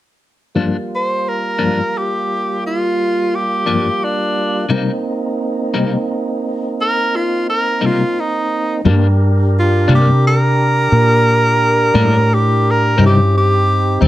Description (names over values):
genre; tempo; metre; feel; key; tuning
blues; 58 BPM (dotted quarters); 12/8; straight; G minor; A4 = 440 Hz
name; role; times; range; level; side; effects
tonewheel organ; sustained chords; 0.5-14.1 s; G3 to Bb4; -21 LUFS; right 2 dB; slow rotary speaker
clean electric guitar; accompaniment; 0.6-14.1 s; G2 to Eb4; -16 LUFS; left 4 dB; harmonic tremolo
bright tenor saxophone; melody; 1.0-14.0 s; D4 to C5; -16 LUFS; equal; none
woody fretless electric bass; bass; 8.9-14.1 s; Eb2 to C3; -13 LUFS; equal; ensemble chorus
room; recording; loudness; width
light reverb; dark, warm production; -13 LUFS; side -14 dB against mid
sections
0.5-8.8 A section; 8.8-14.1 B section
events
none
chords
0.5 Gm7; 4.7 Cm7; 8.8 Gm; 13.0 Cm